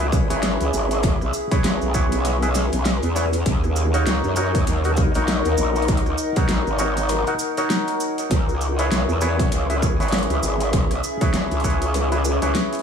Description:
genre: glitch hop.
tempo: 99 BPM.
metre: 4/4.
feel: swing 59% on 16ths.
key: C# dorian.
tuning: A4 = 442 Hz.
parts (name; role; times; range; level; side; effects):
overdriven clav; stabs; 0.0-12.8 s; D#4 to F#5; -26 LUFS; right 1 dB; auto-wah, sidechain pumping, dub echo.
growl bass; bass; 0.0-12.5 s; G#1 to F#2; -22 LUFS; equal; chorus.
dubstep drum kit; drums; 0.0-12.8 s; hi-hat, rim click, snare drum; -28 LUFS; left 1 dB; studio reverb, dub echo.
cabasa; percussion; 0.0-12.8 s; none; -34 LUFS; right 4 dB; dub echo.
warbly tape-like pad; texture; 0.0-12.8 s; C#4 to F#5; -27 LUFS; left 3 dB; chorus, built-in reverb, sidechain pumping.
electronic kick drum; drums; 0.1-11.8 s; none; -21 LUFS; equal; studio reverb.
room: digital ambience.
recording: echo-heavy mix, small room ambience.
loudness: -18 LUFS.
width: side -7 dB against mid.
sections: 0.0-12.8 A section.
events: break 12.6.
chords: 0.0 C#m7; 3.5 D#m7; 8.3 C#m7.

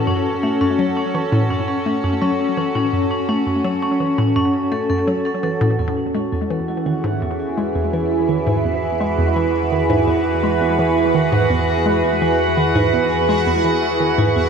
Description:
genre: ambient.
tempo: 84 BPM.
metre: 4/4.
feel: straight.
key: E major.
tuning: A4 = 442 Hz.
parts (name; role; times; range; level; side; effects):
evolving wavetable pad; sustained chords; 0.0-14.5 s; E3 to B5; -20 LUFS; right 2 dB; chorus, built-in reverb.
vibraphone with medium hard mallets; arpeggios; 0.0-14.5 s; C#4 to A4; -23 LUFS; left 2 dB; auto-pan, tape echo.
hollow square pluck; riff; 0.0-14.5 s; E2 to A3; -22 LUFS; equal; chorus, tape echo.
analog drone; bass; 7.6-14.5 s; E2; -27 LUFS; right 1 dB; chorus.
bubbling stepped-filter texture; texture; 6.3-14.5 s; F#4 to F#5; -24 LUFS; equal; chorus, built-in reverb.
room: moderate plate reverb, RT60 2.9 s.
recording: none.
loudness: -16 LUFS.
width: side -6 dB against mid.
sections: 0.0-5.8 A section; 5.8-14.5 B section.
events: fade-in on vibraphone 5.8-14.5.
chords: 0.0 F#m; 5.8 E.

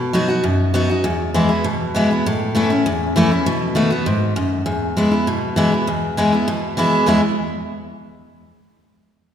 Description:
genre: bluegrass.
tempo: 199 BPM.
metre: 4/4.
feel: straight.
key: E major.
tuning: A4 = 444 Hz.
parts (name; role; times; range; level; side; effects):
picked steel-string acoustic guitar; solo; 0.0-7.2 s; E2 to F#4; -16 LUFS; equal; none.
room: wet concert hall reverb, RT60 2.0 s.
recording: recorded in a church or concert hall.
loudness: -16 LUFS.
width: side -9 dB against mid.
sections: 0.0-5.9 A section; 5.9-7.1 B section; 7.1-8.3 C section.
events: none.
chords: 0.0 B; 1.0 E; 2.2 A; 3.5 B7; 4.7 E.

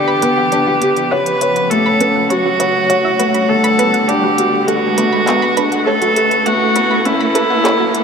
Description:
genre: piano and strings electronica.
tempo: 101 BPM.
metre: 4/4.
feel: straight.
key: B minor.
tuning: A4 = 440 Hz.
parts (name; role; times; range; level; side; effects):
rich viola; melody; 0.0-8.0 s; E4 to B4; -15 LUFS; right 1 dB; none.
warm string quartet; sustained chords; 0.0-8.0 s; C#3 to F#5; -21 LUFS; left 2 dB; none.
felt-muted upright piano; riff; 0.0-8.0 s; A3 to D5; -18 LUFS; left 2 dB; none.
riser; sound effects; 0.0-8.0 s; none; -23 LUFS; right 2 dB; none.
analog pluck; arpeggios; 0.1-7.9 s; F#4 to B5; -23 LUFS; right 4 dB; chorus, ping-pong delay.
organic electronic drum kit; drums; 0.2-8.0 s; handclaps, hi-hat; -23 LUFS; equal; overdrive.
room: moderate huge ambient reverb, RT60 7.2 s.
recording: high-pass filter.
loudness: -12 LUFS.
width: side -6 dB against mid.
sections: 0.0-8.0 A section.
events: build-up 0.0-8.0; riser 0.0-8.0.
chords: 0.0 G; 1.1 F#m; 3.5 Bm7; 5.9 Aadd9.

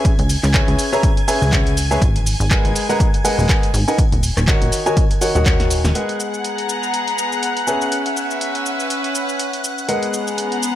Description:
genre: piano house.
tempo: 122 BPM.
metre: 4/4.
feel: swing 57% on 16ths.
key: G# minor.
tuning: A4 = 440 Hz.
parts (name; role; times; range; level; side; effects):
string machine, violins; sustained chords; 0.0-10.8 s; F#5 to G#6; -27 LUFS; equal; ensemble chorus, sidechain pumping.
clear grand piano; riff; 0.0-10.8 s; D#3 to A#5; -21 LUFS; left 1 dB; sidechain pumping, digital delay.
electronic kick drum; drums; 0.0-5.6 s; none; -17 LUFS; equal; none.
punchy analog drum machine; drums; 0.0-10.7 s; cabasa, handclaps, hi-hat, rim click, snare drum; -24 LUFS; equal; none.
plucky analog bass; bass; 0.2-5.9 s; D#1 to C#2; -18 LUFS; equal; sidechain pumping.
warm studio string section; texture; 6.0-10.8 s; B3 to A#5; -22 LUFS; left 2 dB; sidechain pumping.
room: light reverb, digital ambience.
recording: none.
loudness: -15 LUFS.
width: side -12 dB against mid.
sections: 0.0-6.0 A section; 6.0-10.8 B section.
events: drum fill 5.5-6.0.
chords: 0.0 C#m7; 2.0 G#m9; 4.0 D#m7; 6.0 G#m9; 7.7 C#m7; 9.9 G#m9.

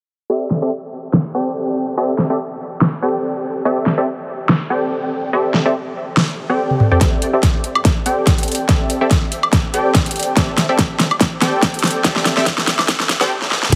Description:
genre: future bass.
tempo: 143 BPM.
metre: 4/4.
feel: swing 55% on 16ths, half-time.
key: C major.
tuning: A4 = 440 Hz.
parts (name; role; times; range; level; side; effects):
supersaw stab; riff; 0.3-13.8 s; C4 to G5; -21 LUFS; equal; sidechain pumping, low-pass filter, digital delay.
big-room dance drum kit; drums; 0.5-13.8 s; crash cymbal, hi-hat, snare drum, toms, woodblock; -19 LUFS; equal; overdrive, small room ambience.
electronic kick drum; drums; 7.0-13.8 s; none; -19 LUFS; equal; overdrive, small room ambience.
long sustained 808-style bass; bass; 13.7-13.8 s; C2; -14 LUFS; equal; sidechain pumping.
room: moderate huge ambient reverb, RT60 6.3 s.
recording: heavily compressed radio sound, high-pass filter, low-pass filter.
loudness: -17 LUFS.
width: mono.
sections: 0.3-7.0 A section; 7.0-13.7 B section.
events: filter sweep 0.3-7.0, 7.0-13.7; drum fill 6.7-7.0, 7.0-13.3, 13.4-13.7; build-up 7.0-13.7; filter sweep on supersaw synth 7.0-13.7.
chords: 0.3 C69.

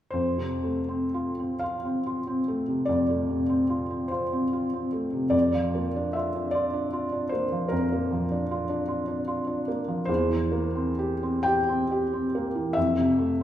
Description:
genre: classical, romantic nocturne for solo piano.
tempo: 39-53 BPM (dotted quarters).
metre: 12/8.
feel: rubato.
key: F major.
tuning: A4 = 441 Hz.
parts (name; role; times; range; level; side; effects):
felt-muted upright piano; solo; 0.1-13.4 s; E2 to G5; -24 LUFS; equal; none.
room: wet recital hall reverb, RT60 1.7 s.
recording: heard from further back in the room.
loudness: -24 LUFS.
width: side -11 dB against mid.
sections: 0.1-13.4 A section.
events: none.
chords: 0.1 F; 5.3 Bb/F; 10.1 C7/E; 12.8 F.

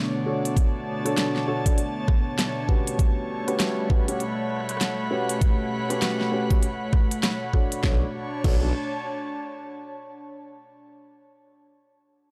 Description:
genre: glitch hop.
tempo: 99 BPM.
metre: 4/4.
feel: swing 61% on 16ths.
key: B minor.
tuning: A4 = 437 Hz.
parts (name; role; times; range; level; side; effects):
warbly tape-like pad; sustained chords; 0.0-8.1 s; B2 to B3; -36 LUFS; equal; chorus, built-in reverb, sidechain pumping.
airy breathy pad; texture; 0.0-10.2 s; B2 to B5; -32 LUFS; equal; chorus, sidechain pumping.
dark grand piano; stabs; 0.3-8.7 s; C#4 to D5; -33 LUFS; equal; vintage 12-bit sampler grit, sidechain pumping, low-pass filter, tape echo.
pop drum kit; drums; 0.5-8.6 s; crash cymbal, hi-hat, rim click, snare drum; -31 LUFS; equal; studio reverb.
electronic kick drum; drums; 0.6-8.6 s; none; -24 LUFS; equal; studio reverb.
formant-sweep wobble bass; bass; 7.8-8.7 s; B1; -27 LUFS; equal; chorus, tube saturation.
room: light reverb.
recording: dark, warm production.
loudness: -25 LUFS.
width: mono.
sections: 0.0-7.8 A section; 7.8-10.3 B section.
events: filter sweep on grand piano 0.0-7.8.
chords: 0.0 Bm9.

